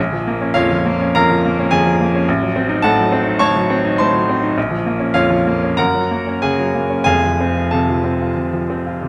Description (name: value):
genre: classical, romantic character piece for solo piano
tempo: 91-109 BPM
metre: 4/4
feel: rubato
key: Bb minor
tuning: A4 = 437 Hz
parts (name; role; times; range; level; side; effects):
- clear baby grand piano; solo; 0.0-9.1 s; F1 to Db6; -16 LUFS; equal; none
room: moderate recital hall reverb, RT60 1.5 s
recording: none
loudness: -16 LUFS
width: mono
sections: 0.0-9.1 A section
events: none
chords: 0.0 Bbm; 2.3 Adim7; 4.6 Bbm; 5.8 Gb; 7.1 F